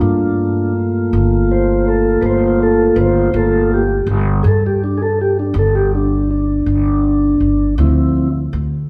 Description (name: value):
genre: slow blues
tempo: 54 BPM (dotted quarters)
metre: 12/8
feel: straight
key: unclear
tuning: A4 = 440 Hz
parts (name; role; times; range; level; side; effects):
- mellow tonewheel organ; sustained chords; 0.0-8.3 s; F3 to C5; -17 LUFS; equal; slow rotary speaker
- upright bass; bass; 0.0-8.9 s; G1 to G2; -19 LUFS; equal; none
room: wet large studio reverb, RT60 1.3 s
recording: band playing live in one room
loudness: -15 LUFS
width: mono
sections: 0.0-8.9 A section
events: tonewheel organ solo 0.0-8.9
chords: 0.0 Gm9; 7.8 Dm9